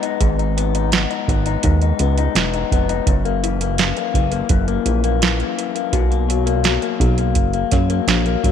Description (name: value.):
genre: indie pop, bedroom pop.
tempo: 84 BPM.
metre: 4/4.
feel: straight.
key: G# minor.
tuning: A4 = 439 Hz.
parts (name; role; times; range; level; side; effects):
electric guitar through a small old amp; accompaniment; 0.0-8.5 s; F#2 to D#4; -21 LUFS; left 12 dB; wide subtle chorus, warbly pitch drift.
soft vintage rhythm box; drums; 0.0-8.5 s; hi-hat, kick drum, snare drum; -20 LUFS; right 3 dB; overdrive.
chorused synth bass; bass; 0.2-8.5 s; E1 to F#2; -19 LUFS; right 1 dB; none.
room: light reverb.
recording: 1960s-style stereo.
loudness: -16 LUFS.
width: side -8 dB against mid.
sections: 0.0-8.5 A section.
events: none.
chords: 0.0 G#m; 3.1 F#7; 5.9 B5.